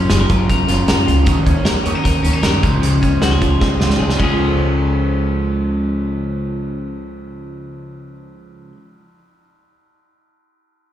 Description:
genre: jangly indie pop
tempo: 154 BPM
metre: 4/4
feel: straight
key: Db major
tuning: A4 = 440 Hz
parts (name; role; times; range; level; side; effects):
- electric guitar at the edge of break-up; accompaniment; 0.0-8.8 s; Db3 to Gb4; -20 LUFS; right 3 dB; phaser, slapback echo
- clean electric guitar; arpeggios; 0.0-8.8 s; Db3 to Bb4; -21 LUFS; left 4 dB; none
- upright bass; bass; 0.0-8.7 s; Gb1 to Gb2; -20 LUFS; equal; none
- loose indie drum kit; drums; 0.1-4.3 s; hi-hat, kick drum, ride cymbal, snare drum; -19 LUFS; equal; none
room: small room ambience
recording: live gig heard through the venue's PA, recital hall reverb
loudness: -14 LUFS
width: side -11 dB against mid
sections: 0.0-4.4 A section; 4.4-7.5 B section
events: drum fill 3.6-4.4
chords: 0.0 Gbmaj7; 1.3 Ebm7; 2.6 Db

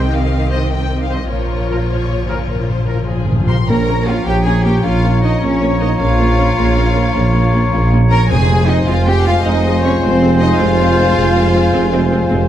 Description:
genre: cinematic, heroic adventure film score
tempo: 104 BPM (dotted quarters)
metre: 12/8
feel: straight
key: Bb dorian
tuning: A4 = 440 Hz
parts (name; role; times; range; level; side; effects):
- rich symphonic violin section; melody; 0.0-12.4 s; C5 to C6; -27 LUFS; left 7 dB; none
- warm symphonic violin section; second line; 0.0-12.5 s; G4 to C6; -26 LUFS; left 5 dB; none
- warm symphonic viola section; accompaniment; 0.0-12.4 s; Eb3 to F4; -22 LUFS; equal; none
- rich symphonic cello section; bass; 0.0-12.5 s; Bb2 to C5; -20 LUFS; right 2 dB; none
- rich symphonic double bass section; bass; 0.0-12.5 s; F1 to C2; -16 LUFS; right 1 dB; none
- mellow French horn section; sustained chords; 0.5-12.5 s; F3 to F4; -23 LUFS; left 2 dB; none
- clear trumpet section; stabs; 0.5-12.5 s; Bb4 to Db5; -24 LUFS; left 1 dB; none
- timpani; percussion; 1.3-4.2, 8.3-8.8 s; F2 to Bb2; -20 LUFS; left 1 dB; none
- bright clarinet; second line; 3.7-12.5 s; C5 to Db5; -25 LUFS; left 5 dB; none
- mellow hollow concert flute; second line; 3.7-12.5 s; Ab5 to Bb5; -26 LUFS; left 4 dB; none
- mellow tuba; bass; 3.7-12.5 s; F1 to Bb1; -20 LUFS; right 2 dB; none
room: moderate scoring stage reverb, RT60 1.6 s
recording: none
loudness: -12 LUFS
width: side -11 dB against mid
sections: 0.0-3.7 A section; 3.7-12.5 A section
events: timpani fill 1.3-3.7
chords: 0.0 Cm; 1.3 Bbm; 8.3 Fm

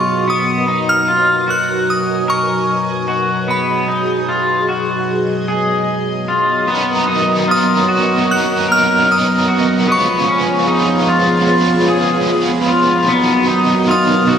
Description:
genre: dream pop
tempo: 75 BPM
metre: 4/4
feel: straight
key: B lydian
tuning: A4 = 441 Hz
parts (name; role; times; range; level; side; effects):
- glassy synth bell; melody; 0.0-14.4 s; B5 to F#6; -18 LUFS; equal; chorus, analog delay
- string machine, full ensemble; sustained chords; 0.0-14.4 s; B2 to D#5; -17 LUFS; right 1 dB; ensemble chorus
- electric guitar at the edge of break-up; arpeggios; 0.0-14.4 s; B3 to A#4; -17 LUFS; left 2 dB; lush chorus, analog delay
- drifting glass-harmonics texture; texture; 2.0-11.2 s; E#4 to G#5; -28 LUFS; right 3 dB; chorus, built-in reverb, analog delay
- biting overdriven guitar; accompaniment; 6.7-14.4 s; B2 to B4; -19 LUFS; right 2 dB; tremolo, analog chorus, analog delay
room: wet spring reverb, RT60 1.6 s, digital ambience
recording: echo-heavy mix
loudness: -12 LUFS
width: side -8 dB against mid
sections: 0.0-6.7 A section; 6.7-14.4 B section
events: none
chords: 0.3 Bmaj7; 3.5 G#m7; 6.7 Bmaj7; 9.9 C#7; 13.1 Bmaj7

